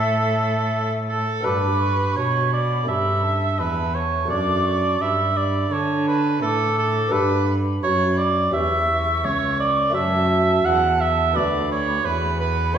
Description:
classical, baroque-style sonata movement with continuo; 85 BPM; 4/4; straight; D major; A4 = 440 Hz
hollow concert flute; melody; 0.0-12.8 s; E5 to D6; -30 LUFS; left 3 dB
warm oboe; second line; 0.0-12.8 s; A4 to F#5; -21 LUFS; right 3 dB
lute; accompaniment; 0.0-12.8 s; D2 to A4; -27 LUFS; equal
warm cello; bass; 0.0-12.8 s; C#2 to D3; -24 LUFS; equal
wet recital hall reverb, RT60 1.7 s; heard from further back in the room; -18 LUFS; side -8 dB against mid
0.0-1.5 A section; 1.5-12.8 B section
0.0 A; 1.5 G; 2.9 A7/G; 4.3 D/F#; 7.1 G; 8.5 C#dim/E; 9.9 F#m; 11.4 Bm/D

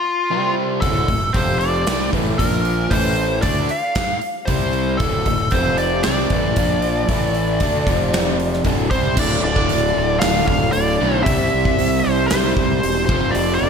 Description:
hard rock; 115 BPM; 4/4; straight; D minor; A4 = 440 Hz
nasal lead guitar with a parked wah; melody; 0.0-13.7 s; F4 to F5; -21 LUFS; left 1 dB; overdrive
overdriven semi-hollow guitar; riff; 0.3-13.7 s; D2 to D4; -21 LUFS; right 1 dB; slapback echo
fuzz fingered electric bass; bass; 0.8-13.7 s; D1 to D2; -23 LUFS; equal; overdrive
gated 80s drum kit; drums; 0.8-13.5 s; crash cymbal, hi-hat, kick drum, snare drum; -22 LUFS; equal
moderate lush hall reverb, RT60 1.7 s, studio reverb; big arena sound; -16 LUFS; side -6 dB against mid
0.0-9.2 A section; 9.2-13.7 B section
0.3 C5; 0.8 D5; 1.4 F5; 1.9 D5; 2.4 Bb5; 2.9 A5; 3.4 Dm; 4.5 C5; 5.0 D5; 5.5 F5; 6.0 D5; 6.6 Bb5; 7.1 A5; 7.6 D5; 7.9 F5; 8.7 D5; 11.3 C; 13.1 F5

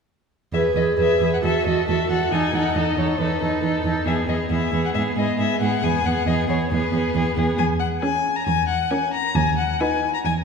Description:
quick classical-period movement for string quartet; 136 BPM; 4/4; straight; E major; A4 = 440 Hz
dark violin; melody; 0.5-10.3 s; B4 to A#5; -24 LUFS; left 7 dB
rich violin; second line; 0.5-10.1 s; G#4 to B4; -26 LUFS; left 2 dB
rich viola; accompaniment; 0.5-10.1 s; B3 to G#4; -24 LUFS; right 2 dB
clear cello; bass; 0.5-10.4 s; D#2 to G#2; -24 LUFS; right 4 dB
wet concert hall reverb, RT60 1.7 s; heard from further back in the room; -19 LUFS; side -5 dB against mid
0.5-10.4 A section
0.5 E; 1.4 F#m7/E; 2.3 B7/E; 4.1 E; 5.0 G#m7; 5.8 E; 7.6 C#m/E; 9.4 B/D#

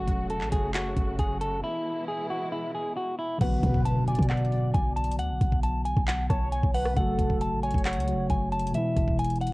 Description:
hip hop, trap; 135 BPM; 4/4; half-time; B dorian; A4 = 440 Hz
clean electric guitar; melody; 0.0-9.5 s; E4 to A5; -31 LUFS; equal; low-pass filter, cassette tape
muted studio string section; sustained chords; 0.0-3.4 s; B2 to F#4; -35 LUFS; equal; cassette tape
warm 808-style bass; bass; 0.0-9.5 s; E1 to B2; -29 LUFS; equal
trap drum kit; drums; 0.1-9.5 s; crash cymbal, handclaps, hi-hat, kick drum, rim click; -28 LUFS; equal; cassette tape
warm velvety synth lead; second line; 3.4-8.7 s; A4 to D5; -36 LUFS; right 2 dB; chorus, cassette tape, analog delay
tine electric piano; accompaniment; 3.4-9.5 s; B2 to F#4; -31 LUFS; left 2 dB; medium stereo tremolo, low-pass filter, cassette tape
impact; sound effects; 3.4-5.2 s; -36 LUFS; equal
digital ambience; home recording on cassette; -24 LUFS; side -22 dB against mid
0.0-3.4 A section; 3.4-9.5 B section
break 1.6-3.4; impact 3.4-5.2
0.0 F#m; 1.6 E; 3.4 Bm; 7.0 F#m; 8.7 E

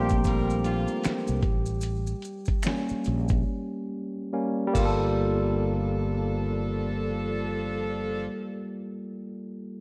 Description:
R&B, neo-soul; 67-78 BPM; 4/4; swing 60% on 16ths; G minor; A4 = 439 Hz
barky tine electric piano; accompaniment; 0.0-9.8 s; F3 to C5; -31 LUFS; equal; overdrive
clear saxophone section; stabs; 0.0-8.3 s; D3 to Bb4; -38 LUFS; equal
fretless electric bass; bass; 0.0-8.3 s; G1 to C2; -32 LUFS; equal; subtle chorus
dusty soul sampler-style drum kit; drums; 0.1-5.0 s; crash cymbal, hi-hat, kick drum, snare drum; -30 LUFS; equal; vintage 12-bit sampler grit
maracas and finger snaps; percussion; 0.1-5.6 s; -44 LUFS; equal
light reverb, studio reverb; -28 LUFS; mono
0.0-5.2 A section; 5.2-8.8 B section
slowing down 0.0-5.2; tine electric piano solo 0.0-5.2; silent gap 3.5-5.2
0.0 C9sus4; 1.4 A7b9; 4.3 Gdim; 4.8 Gm9

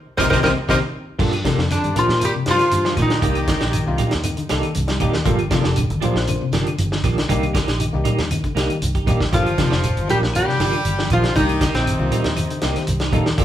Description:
afrobeat; 118 BPM; 4/4; straight; G minor; A4 = 440 Hz
metal-body resonator slide guitar; melody; 0.2-4.5, 9.3-13.1 s; C4 to Eb5; -22 LUFS; equal
breathy baritone saxophone; second line; 0.2-4.5, 9.3-13.1 s; C3 to G3; -28 LUFS; left 3 dB
brilliant trumpet; second line; 0.2-4.5, 9.3-13.1 s; D4 to G4; -30 LUFS; right 3 dB
overdriven reed electric piano; accompaniment; 0.2-13.4 s; Bb3 to C5; -28 LUFS; left 3 dB
electric guitar at the edge of break-up; arpeggios; 0.2-13.4 s; Bb2 to G3; -27 LUFS; left 4 dB; vibrato effect
semi-hollow electric guitar; stabs; 0.2-13.4 s; F3 to G4; -26 LUFS; right 5 dB; tremolo
fingered electric bass; bass; 0.2-13.4 s; F1 to Bb2; -24 LUFS; equal
warm soul drum kit; drums; 0.2-13.4 s; crash cymbal, hi-hat, kick drum, snare drum; -24 LUFS; equal
claves; percussion; 0.2-13.3 s; -36 LUFS; left 4 dB
congas; percussion; 0.2-13.4 s; -26 LUFS; right 1 dB
shekere; percussion; 0.2-13.4 s; -31 LUFS; right 2 dB
wet large studio reverb, RT60 1.0 s; band playing live in one room; -17 LUFS; side -11 dB against mid
0.0-1.2 A section; 1.2-13.4 A section
reed electric piano fill 0.0-1.2; band accent 0.0-1.2; drum fill 0.6-1.2
0.0 Cm7; 1.2 Gm7; 3.2 Cm7; 5.3 Gm7; 7.3 Cm7; 9.3 Gm7; 11.4 Cm7

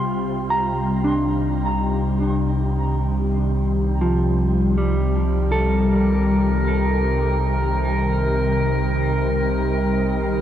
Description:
ambient; free time; C dorian; A4 = 441 Hz
glassy FM pad; sustained chords; 0.0-10.4 s; C3 to F4; -22 LUFS; left 1 dB; ensemble chorus, built-in reverb, shimmer reverb
mellow electric guitar; arpeggios; 0.0-8.1 s; F3 to C6; -25 LUFS; right 1 dB; diffuse ambient delay, shimmer reverb
warm sub bass; bass; 0.0-10.4 s; C2; -23 LUFS; right 1 dB
analog drone; drone; 1.5-10.4 s; C3 to G3; -31 LUFS; equal
drifting glass-harmonics texture; texture; 5.7-10.4 s; Bb4; -25 LUFS; equal; chorus, built-in reverb, shimmer reverb
wet huge ambient reverb, RT60 8.3 s; cassette tape; -18 LUFS; side -10 dB against mid
0.0-10.4 A section
0.0 Cmadd9

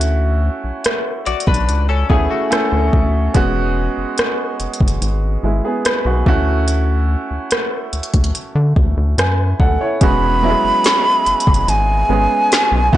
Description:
contemporary R&B; 72 BPM; 4/4; straight; E mixolydian; A4 = 442 Hz
clear concert grand piano; accompaniment; 0.0-13.0 s; F#3 to G#5; -20 LUFS; right 2 dB
rubbery square bass; bass; 0.0-13.0 s; E1 to D3; -17 LUFS; equal
smooth R&B drum kit; drums; 0.0-13.0 s; hi-hat, kick drum, rim click, snare drum; -17 LUFS; equal
direct-recorded clean electric guitar; arpeggios; 1.3-3.3 s; A3 to D5; -22 LUFS; left 7 dB; wide subtle chorus, tape echo
breathy mellow silver concert flute; melody; 10.0-13.0 s; G#5 to B5; -15 LUFS; right 1 dB
little or no reverb; blown-out, overdriven recording, overdrive, nothing above 10.4 kHz; -14 LUFS; side -14 dB against mid
0.0-10.0 A section; 10.0-13.0 B section
0.0 Dmaj7; 3.3 E69; 6.3 Dmaj7; 10.0 E69

